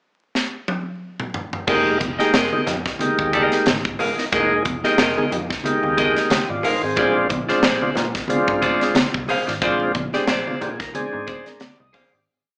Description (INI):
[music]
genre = funk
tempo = 91 BPM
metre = 4/4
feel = swing 56% on 16ths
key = F dorian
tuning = A4 = 440 Hz
[part]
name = crisp fusion drum kit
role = drums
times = 0.3-12.1 s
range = crash cymbal, hi-hat, kick drum, snare drum, toms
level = -26 LUFS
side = equal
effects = none
[part]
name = clean electric guitar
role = accompaniment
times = 1.7-12.2 s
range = Ab4 to F5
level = -26 LUFS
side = equal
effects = slapback echo
[part]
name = tonewheel organ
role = stabs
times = 1.7-12.3 s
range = Ab3 to Eb5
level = -24 LUFS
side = equal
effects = slow rotary speaker, slapback echo
[part]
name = vintage muted picked electric bass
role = bass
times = 1.7-12.3 s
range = F1 to Bb2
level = -34 LUFS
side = equal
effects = none
[part]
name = congas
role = percussion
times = 1.7-12.1 s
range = none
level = -31 LUFS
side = equal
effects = none
[sound]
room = light reverb, studio reverb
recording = live gig heard through the venue's PA, club reverb, vinyl crackle, small speaker sound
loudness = -20 LUFS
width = mono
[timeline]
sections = 0.0-1.7 pickup bar; 1.7-12.3 A section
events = drum fill 0.4-1.7; fade-out 9.6-12.3; tonewheel organ fill 10.3-12.3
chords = 0.0 N.C.; 1.7 Fm11; 7.0 Bb9